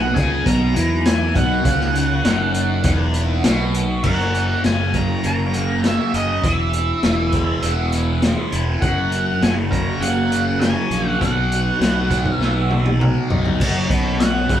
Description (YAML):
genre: psychedelic rock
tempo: 100 BPM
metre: 4/4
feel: straight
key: F# mixolydian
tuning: A4 = 441 Hz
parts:
  - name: octave-fuzz lead guitar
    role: melody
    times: 0.0-14.6 s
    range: D#5 to A#5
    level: -24 LUFS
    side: right 2 dB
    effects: distortion
  - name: string machine, full ensemble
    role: sustained chords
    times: 0.0-14.6 s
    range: F#3 to D#5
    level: -29 LUFS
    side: right 1 dB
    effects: ensemble chorus
  - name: thick fuzz guitar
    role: riff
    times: 0.0-14.6 s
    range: E2 to E4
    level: -21 LUFS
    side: equal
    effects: distortion, phaser
  - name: fuzz fingered electric bass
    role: bass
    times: 0.0-14.6 s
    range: E1 to E2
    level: -22 LUFS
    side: equal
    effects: overdrive
  - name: crunchy breakbeat drum kit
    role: drums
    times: 0.2-14.6 s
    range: crash cymbal, hi-hat, kick drum, snare drum, toms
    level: -21 LUFS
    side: left 1 dB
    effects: none
room: wet studio reverb, RT60 0.6 s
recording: band playing live in one room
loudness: -16 LUFS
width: side -10 dB against mid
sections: 0.0-4.0 A section; 4.0-13.6 B section; 13.6-14.6 C section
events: drum fill 12.4-13.6; lead electric guitar solo 13.6-14.6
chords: 0.0 F#; 6.4 E; 8.8 F#; 11.2 B; 13.6 F#